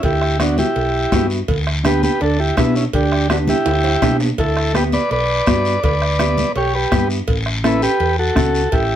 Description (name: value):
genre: latin, cumbia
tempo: 166 BPM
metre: 4/4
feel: straight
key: unclear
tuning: A4 = 440 Hz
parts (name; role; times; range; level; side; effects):
- overdriven combo organ; melody; 0.0-9.0 s; B3 to D5; -18 LUFS; right 1 dB; none
- hollow-body short-scale fingered electric bass; bass; 0.0-9.0 s; A1 to B2; -21 LUFS; equal; none
- bombo; percussion; 0.0-8.9 s; none; -21 LUFS; equal; none
- cowbell and timbales; percussion; 0.0-8.9 s; none; -25 LUFS; right 4 dB; none
- guiro; percussion; 0.0-9.0 s; none; -28 LUFS; left 3 dB; none
- mellow electric guitar; accompaniment; 0.4-8.6 s; B3 to A4; -21 LUFS; equal; none
- congas; percussion; 0.4-8.5 s; none; -24 LUFS; left 4 dB; none
room: moderate small room reverb, RT60 0.5 s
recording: none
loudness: -14 LUFS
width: side -10 dB against mid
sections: 0.0-9.0 A section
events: drum fill 3.7-4.4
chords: 0.0 Em7; 1.5 G/D; 4.4 Em7; 7.3 A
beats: | 0.04 0.40 0.76 1.12 | 1.49 1.85 2.21 2.57 | 2.93 3.30 3.66 4.02 | 4.38 4.75 5.11 5.47 | 5.83 6.19 6.56 6.92 | 7.28 7.64 8.00 8.37 | 8.73